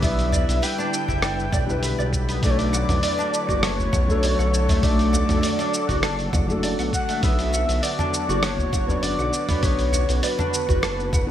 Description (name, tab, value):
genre	organic downtempo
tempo	100 BPM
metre	4/4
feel	swing 53% on 16ths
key	B minor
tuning	A4 = 440 Hz
part	breathy flute-like synth lead	melody	0.0-11.3 s	B4 to G5	-26 LUFS	left 1 dB	lush chorus, digital delay, shimmer reverb
part	felt-muted upright piano	accompaniment	0.0-11.3 s	F#3 to D5	-30 LUFS	left 2 dB	vintage 12-bit sampler grit, sidechain pumping, digital delay, shimmer reverb
part	warm analog pad	sustained chords	0.0-11.3 s	D3 to B4	-31 LUFS	right 1 dB	chorus, sidechain pumping, shimmer reverb
part	oud	arpeggios	0.0-11.3 s	A3 to F#5	-28 LUFS	equal	digital delay, shimmer reverb
part	smooth synth bass	bass	0.0-11.3 s	F#1 to B1	-24 LUFS	equal	none
part	dusty soul sampler-style drum kit	drums	0.0-11.3 s	hi-hat, rim click, shaker, toms	-27 LUFS	equal	small room ambience
part	electronic kick drum	drums	0.0-11.3 s	none	-25 LUFS	equal	small room ambience
part	udu	percussion	0.3-11.3 s	none	-27 LUFS	equal	none
room	moderate plate reverb, RT60 1.6 s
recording	bright 1980s-style digital production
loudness	-19 LUFS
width	side -11 dB against mid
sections	0.0-7.2 A section; 7.2-11.3 A section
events	none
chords	0.0 Em7; 2.4 D; 7.2 Bm